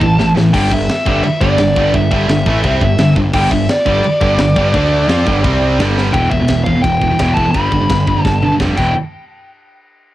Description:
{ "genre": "heavy metal", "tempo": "171 BPM", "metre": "4/4", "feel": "straight", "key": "unclear", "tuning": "A4 = 440 Hz", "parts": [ { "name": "high-gain lead guitar", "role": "melody", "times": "0.0-8.9 s", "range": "D5 to B5", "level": "-17 LUFS", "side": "equal", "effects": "distortion" }, { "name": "high-gain distorted guitar", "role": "riff", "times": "0.0-8.9 s", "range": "E2 to F4", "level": "-18 LUFS", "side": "right 5 dB", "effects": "distortion, cassette tape" }, { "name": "scooped high-gain guitar", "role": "riff", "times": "0.0-8.9 s", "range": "E2 to F4", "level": "-21 LUFS", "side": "left 6 dB", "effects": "distortion, cassette tape" }, { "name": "tight distorted guitar", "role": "riff", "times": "0.0-6.1 s", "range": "G2 to F4", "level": "-20 LUFS", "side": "equal", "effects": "distortion, cassette tape" }, { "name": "fuzz picked electric bass", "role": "bass", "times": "0.0-8.9 s", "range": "E1 to F2", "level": "-16 LUFS", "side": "equal", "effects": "overdrive" }, { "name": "tight metal drum kit", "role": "drums", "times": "0.0-8.9 s", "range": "china cymbal, crash cymbal, kick drum, ride cymbal, snare drum, toms", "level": "-19 LUFS", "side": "equal", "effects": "none" } ], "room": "light reverb", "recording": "home recording on cassette", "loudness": "-11 LUFS", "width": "side -14 dB against mid", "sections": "0.0-6.1 A section; 6.1-8.9 B section; 8.9-10.1 C section", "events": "drum fill 0.2-0.5, 6.0, 8.2-8.9", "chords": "0.0 A5; 0.5 G5; 4.7 D5; 5.1 G5; 5.4 C5; 5.8 G5; 6.1 E5; 7.5 G; 8.8 Em; 8.9 N.C." }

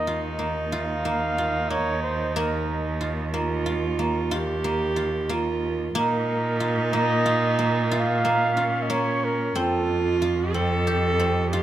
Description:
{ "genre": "contemporary instrumental, chamber music in an uneven meter", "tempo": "183 BPM (eighths)", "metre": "11/8", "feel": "straight", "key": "Bb dorian", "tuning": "A4 = 441 Hz", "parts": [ { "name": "warm flugelhorn", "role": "melody", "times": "0.0-10.2 s", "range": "A4 to F5", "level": "-27 LUFS", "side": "equal", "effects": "none" }, { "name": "warm viola", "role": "second line", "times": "0.0-11.6 s", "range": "Db4 to A4", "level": "-27 LUFS", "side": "right 2 dB", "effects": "none" }, { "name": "guzheng", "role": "arpeggios", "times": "0.0-11.6 s", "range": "Bb3 to G4", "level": "-29 LUFS", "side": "equal", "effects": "none" }, { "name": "clear cello", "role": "bass", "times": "0.0-11.6 s", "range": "Eb2 to Bb2", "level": "-27 LUFS", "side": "right 2 dB", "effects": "none" } ], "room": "light reverb", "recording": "close, detailed microphones", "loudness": "-22 LUFS", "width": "side -12 dB against mid", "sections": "0.0-11.6 A section", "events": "none", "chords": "0.0 Ebsus2; 5.9 Bbm; 9.6 F" }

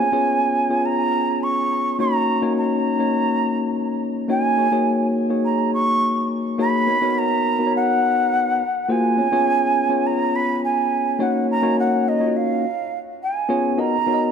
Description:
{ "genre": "pop", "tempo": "104 BPM", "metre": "4/4", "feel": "straight", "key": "unclear", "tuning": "A4 = 437 Hz", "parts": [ { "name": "mellow jazz flute", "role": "melody", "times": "0.0-14.3 s", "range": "D#5 to C#6", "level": "-21 LUFS", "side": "right 3 dB", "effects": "none" }, { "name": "tine electric piano", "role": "accompaniment", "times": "0.0-14.3 s", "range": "A#3 to D#5", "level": "-20 LUFS", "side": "left 2 dB", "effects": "wide subtle chorus" } ], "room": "moderate lush hall reverb, RT60 3.1 s", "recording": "none", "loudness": "-18 LUFS", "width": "side -7 dB against mid", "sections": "0.0-13.8 A section", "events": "none", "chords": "0.0 C#7; 2.0 D#m7; 4.6 F#69; 6.9 Bmaj9; 8.6 G#13; 9.2 C#7; 11.2 D#m7; 12.6 C#7; 13.8 Bmaj7" }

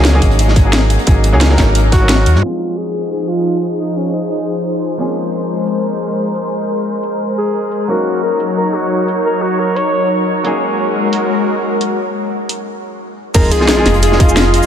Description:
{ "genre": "liquid drum and bass", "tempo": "176 BPM", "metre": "4/4", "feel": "straight", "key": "unclear", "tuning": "A4 = 440 Hz", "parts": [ { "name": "bright grand piano", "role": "accompaniment", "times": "0.0-14.7 s", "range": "F3 to Bb4", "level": "-20 LUFS", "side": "equal", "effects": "ping-pong delay" }, { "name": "sub bass with octave", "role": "bass", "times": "0.0-2.4, 13.3-14.6 s", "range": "F1 to Ab2", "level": "-12 LUFS", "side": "equal", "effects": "tube saturation" }, { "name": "crunchy breakbeat drum kit", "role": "drums", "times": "0.0-2.4, 13.3-14.7 s", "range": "hi-hat, snare drum", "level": "-22 LUFS", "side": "equal", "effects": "high-pass filter on hats, high-pass filter on snare, high-pass filter on room" }, { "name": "drum and bass drum kit", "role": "drums", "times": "0.0-14.7 s", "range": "cabasa, crash cymbal, hi-hat, snare drum", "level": "-18 LUFS", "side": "left 1 dB", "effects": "none" }, { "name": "electronic kick drum", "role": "drums", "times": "0.2-2.0, 13.3-14.3 s", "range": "none", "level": "-11 LUFS", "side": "equal", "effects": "none" }, { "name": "warm alto saxophone", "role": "melody", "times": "1.9-4.6, 7.4-10.1, 13.4-14.7 s", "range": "Db4 to Db5", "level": "-19 LUFS", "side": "equal", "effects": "ping-pong delay" }, { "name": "warm analog pad", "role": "sustained chords", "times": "2.8-14.7 s", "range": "F3 to C6", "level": "-17 LUFS", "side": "left 1 dB", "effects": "chorus" }, { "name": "sub drop", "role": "sound effects", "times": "13.3-14.7 s", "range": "none", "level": "-20 LUFS", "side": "equal", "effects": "none" } ], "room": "moderate huge ambient reverb, RT60 5.9 s", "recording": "dreamy mix soaked in reverb, low-pass filter", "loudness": "-12 LUFS", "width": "side -9 dB against mid", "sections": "0.0-2.4 A section; 2.4-13.3 B section; 13.3-14.7 C section", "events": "kick drops out 2.1-2.4; filter sweep 2.4-13.3; break 12.7-13.3; drop 13.3-14.7; impact 13.3-14.7", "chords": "0.0 Ab9sus4; 2.4 Fm7; 5.0 Bbm9; 7.9 Ebm7; 10.4 Ab9sus4; 13.3 Fm7" }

